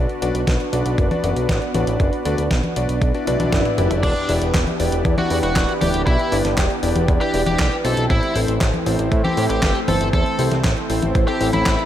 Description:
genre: italo disco.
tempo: 118 BPM.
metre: 4/4.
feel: straight.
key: E minor.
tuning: A4 = 438 Hz.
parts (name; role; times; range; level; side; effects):
lush unison pad; sustained chords; 0.0-11.9 s; E3 to G4; -25 LUFS; right 2 dB; chorus.
bright electric grand piano; stabs; 0.0-11.9 s; C4 to D5; -24 LUFS; left 4 dB; vintage 12-bit sampler grit.
fat analog bass; bass; 0.0-11.8 s; D1 to A2; -22 LUFS; equal; none.
clean 12-bit digital drum machine; drums; 0.1-11.9 s; congas, crash cymbal, handclaps, hi-hat, snare drum, toms; -24 LUFS; left 1 dB; studio reverb, gated reverb.
electronic kick drum; drums; 0.5-11.8 s; none; -21 LUFS; equal; studio reverb.
swell; sound effects; 3.2-4.0 s; none; -28 LUFS; equal; none.
biting lead guitar; melody; 4.0-11.8 s; D4 to A4; -25 LUFS; equal; overdrive, ping-pong delay.
room: light reverb.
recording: none.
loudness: -16 LUFS.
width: side -11 dB against mid.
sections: 0.0-4.0 A section; 4.0-11.9 B section.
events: swell 3.2-4.0; drum fill 3.3-4.0.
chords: 0.0 Bm; 4.0 Em7; 8.1 Am.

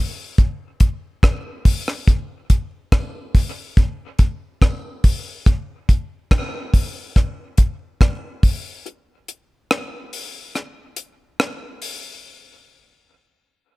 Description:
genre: reggae.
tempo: 71 BPM.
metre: 4/4.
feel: straight.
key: none.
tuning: none.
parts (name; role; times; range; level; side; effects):
deep reggae drum kit; drums; 0.4-12.0 s; hi-hat, kick drum, rim click; -16 LUFS; equal; none.
room: little or no reverb.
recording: echo-heavy mix.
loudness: -18 LUFS.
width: side -21 dB against mid.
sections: 0.0-12.2 A section.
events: break 8.9-12.2.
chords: none.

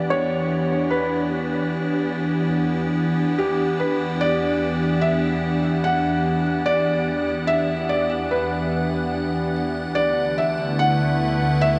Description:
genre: ambient.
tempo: 73 BPM.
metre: 4/4.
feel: straight.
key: E minor.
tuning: A4 = 437 Hz.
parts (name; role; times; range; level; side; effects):
felt-muted upright piano; melody; 0.0-11.8 s; G4 to F#5; -26 LUFS; equal; delay.
evolving wavetable pad; sustained chords; 0.0-11.8 s; D3 to F#5; -24 LUFS; equal; chorus, built-in reverb.
muted symphonic double bass section; bass; 0.0-11.8 s; D2 to E2; -39 LUFS; equal; none.
room: wet huge ambient reverb, RT60 8.2 s.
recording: none.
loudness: -22 LUFS.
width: mono.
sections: 0.0-11.8 A section.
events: fade-in on double bass section 0.0-11.8.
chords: 0.0 Em9; 10.0 D69.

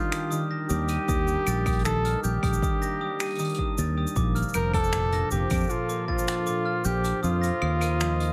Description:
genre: folktronica.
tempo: 78 BPM.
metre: 4/4.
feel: straight.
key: Eb lydian.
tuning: A4 = 440 Hz.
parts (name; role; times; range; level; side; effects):
warm flugelhorn; melody; 0.0-8.3 s; F4 to Bb4; -32 LUFS; equal; tape echo.
glockenspiel with hard plastic mallets; second line; 0.0-8.3 s; D6 to Eb7; -36 LUFS; equal; tape echo.
warm analog pad; sustained chords; 0.0-8.3 s; Eb3 to A5; -40 LUFS; equal; chorus.
concert harp; arpeggios; 0.0-8.3 s; Bb2 to Bb4; -35 LUFS; equal; none.
jazz brush drum kit; drums; 0.1-8.3 s; cabasa, claves, finger snaps, hi-hat; -37 LUFS; equal; none.
fingered electric bass; bass; 0.7-8.3 s; F1 to F2; -29 LUFS; equal; tube saturation.
electronic kick drum; drums; 1.1-6.2 s; none; -32 LUFS; equal; overdrive.
room: light reverb.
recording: none.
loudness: -26 LUFS.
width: mono.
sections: 0.0-8.3 A section.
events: kick drops out 7.2-8.3.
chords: 0.0 Ebmaj7; 4.2 Bbmaj7; 7.2 F7sus4.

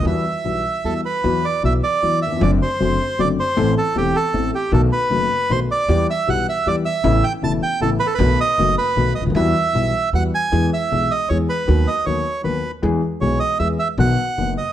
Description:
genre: tango.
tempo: 155 BPM.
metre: 3/4.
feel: rubato.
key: E minor, E major from 10.5 s.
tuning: A4 = 439 Hz.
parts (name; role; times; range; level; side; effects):
bandoneon; melody; 0.0-14.7 s; G4 to A5; -20 LUFS; right 3 dB; none.
dark grand piano; accompaniment; 0.0-14.5 s; E1 to A4; -21 LUFS; left 4 dB; none.
upright bass; bass; 0.0-14.5 s; E1 to E2; -22 LUFS; right 1 dB; none.
room: moderate large studio reverb, RT60 1.1 s.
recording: none.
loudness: -16 LUFS.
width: side -11 dB against mid.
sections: 0.0-1.2 A section; 1.2-10.5 A section; 10.5-14.7 B section.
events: none.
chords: 0.1 Emadd9; 1.2 Esus2; 2.4 D7/F#; 3.6 Am; 4.7 B7; 5.9 Em; 7.0 Aadd9; 8.2 B7; 9.4 Emadd9; 10.5 E; 11.7 B/D#; 12.8 E; 14.0 B.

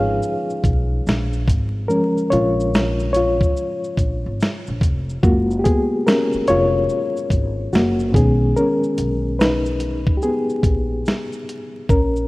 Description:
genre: lo-fi hip hop.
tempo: 72 BPM.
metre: 4/4.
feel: swing 65% on 16ths.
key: unclear.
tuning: A4 = 440 Hz.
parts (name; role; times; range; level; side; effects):
reed electric piano; accompaniment; 0.0-12.3 s; D#3 to E#5; -19 LUFS; left 1 dB; fast tremolo, low-pass filter.
upright bass; bass; 0.0-12.3 s; E#1 to B1; -22 LUFS; equal; none.
dusty soul sampler-style drum kit; drums; 0.2-12.3 s; finger snaps, hi-hat, kick drum, shaker, snare drum; -20 LUFS; equal; vintage 12-bit sampler grit.
room: light reverb, digital ambience.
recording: rough home demo mix, vinyl crackle.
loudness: -16 LUFS.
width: side -20 dB against mid.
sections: 0.0-12.3 A section.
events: reed electric piano solo 0.0-12.3.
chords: 0.0 A#m7; 5.2 F#maj7; 8.1 B69.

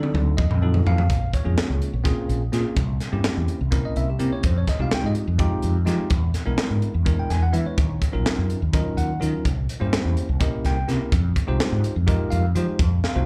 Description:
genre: electric jazz fusion.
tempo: 251 BPM (eighths).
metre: 7/8.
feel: straight.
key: Bb dorian.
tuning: A4 = 440 Hz.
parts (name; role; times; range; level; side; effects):
bell-like tine electric piano; accompaniment; 0.0-13.3 s; F#3 to G#5; -30 LUFS; equal; none.
mellow fretless electric bass; bass; 0.0-13.3 s; Bb1 to F3; -24 LUFS; equal; analog chorus.
crisp fusion drum kit; drums; 0.0-13.1 s; hi-hat, kick drum, snare drum, toms; -27 LUFS; equal; none.
room: little or no reverb.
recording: live gig heard through the venue's PA, club reverb.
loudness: -22 LUFS.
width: mono.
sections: 0.0-1.1 A section; 1.1-13.3 A section.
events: drum fill 0.0-1.1, 13.0.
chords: 0.4 F7b9; 1.1 Bbm9; 2.8 C7b9; 4.4 Fm9; 6.1 E7#11; 7.8 Ebm9; 9.4 C7b9; 11.1 Fm9.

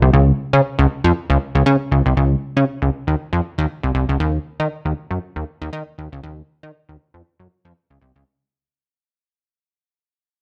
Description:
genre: funk.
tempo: 118 BPM.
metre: 4/4.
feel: swing 56% on 16ths.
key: Db major.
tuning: A4 = 439 Hz.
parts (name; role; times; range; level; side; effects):
plucky analog bass; solo; 0.0-8.2 s; C2 to Eb3; -18 LUFS; equal; none.
room: moderate large studio reverb, RT60 1.0 s.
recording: none.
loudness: -19 LUFS.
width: mono.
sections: 0.1-8.3 A section.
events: fade-out 0.1-8.3.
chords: none.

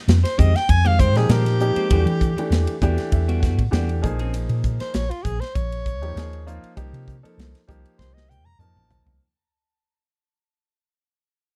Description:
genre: electric jazz fusion.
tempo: 99 BPM.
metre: 4/4.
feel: straight.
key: unclear.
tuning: A4 = 440 Hz.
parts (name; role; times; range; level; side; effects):
woody fretless electric bass; bass; 0.1-9.2 s; A1 to E3; -23 LUFS; equal; none.
modern studio drum kit; drums; 0.1-9.2 s; hi-hat, kick drum, ride cymbal, snare drum, toms; -25 LUFS; equal; none.
breathy soprano saxophone; melody; 0.2-9.1 s; F4 to Bb5; -28 LUFS; equal; none.
clean electric guitar; stabs; 0.2-4.3 s; Eb3 to Ab4; -31 LUFS; equal; subtle chorus.
clear baby grand piano; accompaniment; 1.2-9.2 s; E3 to Ab5; -30 LUFS; equal; none.
room: little or no reverb.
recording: dark, warm production.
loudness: -20 LUFS.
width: mono.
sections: 0.0-9.2 A section.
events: fade-out 0.0-9.2; soprano saxophone solo 0.0-9.2; grand piano fill 2.5-4.3; drum fill 8.0-9.2.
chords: 0.0 Fm9; 1.9 Em9; 4.0 Bbm7; 6.8 Cm7.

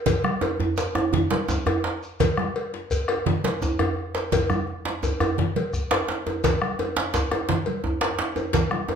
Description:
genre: west african traditional, West African drum ensemble.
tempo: 113 BPM (dotted quarters).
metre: 12/8.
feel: straight.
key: none.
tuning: none.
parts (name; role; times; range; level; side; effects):
bombo; percussion; 0.1-9.0 s; none; -29 LUFS; left 2 dB; none.
congas; percussion; 0.1-9.0 s; none; -28 LUFS; right 4 dB; none.
cowbell; percussion; 0.1-9.0 s; none; -28 LUFS; left 3 dB; none.
djembe; percussion; 0.1-8.9 s; none; -30 LUFS; left 4 dB; none.
shekere; percussion; 0.1-8.7 s; none; -35 LUFS; left 2 dB; none.
djembe; percussion; 0.4-9.0 s; none; -26 LUFS; right 3 dB; none.
room: wet large studio reverb, RT60 0.8 s.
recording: band playing live in one room.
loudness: -22 LUFS.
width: side -7 dB against mid.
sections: 0.0-9.0 A section.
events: none.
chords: none.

